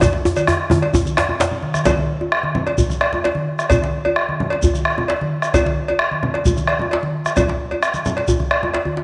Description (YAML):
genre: west african traditional, West African drum ensemble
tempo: 131 BPM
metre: 4/4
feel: straight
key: none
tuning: none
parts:
  - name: bombo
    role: percussion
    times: 0.0-8.8 s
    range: none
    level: -23 LUFS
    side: equal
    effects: none
  - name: congas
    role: percussion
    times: 0.0-9.0 s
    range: none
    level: -26 LUFS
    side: equal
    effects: none
  - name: cowbell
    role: percussion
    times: 0.0-8.8 s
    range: none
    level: -26 LUFS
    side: equal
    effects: none
  - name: djembe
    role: percussion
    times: 0.0-9.0 s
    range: none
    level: -26 LUFS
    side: equal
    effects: none
  - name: djembe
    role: percussion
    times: 0.0-1.5 s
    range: none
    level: -22 LUFS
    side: equal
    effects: none
  - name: shekere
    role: percussion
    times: 0.0-8.4 s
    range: none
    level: -30 LUFS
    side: equal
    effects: none
room: moderate plate reverb, RT60 2.4 s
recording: nothing above 10.9 kHz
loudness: -19 LUFS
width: mono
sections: 0.0-1.9 A section; 1.9-9.0 B section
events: drum fill 0.0-1.9, 8.8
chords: none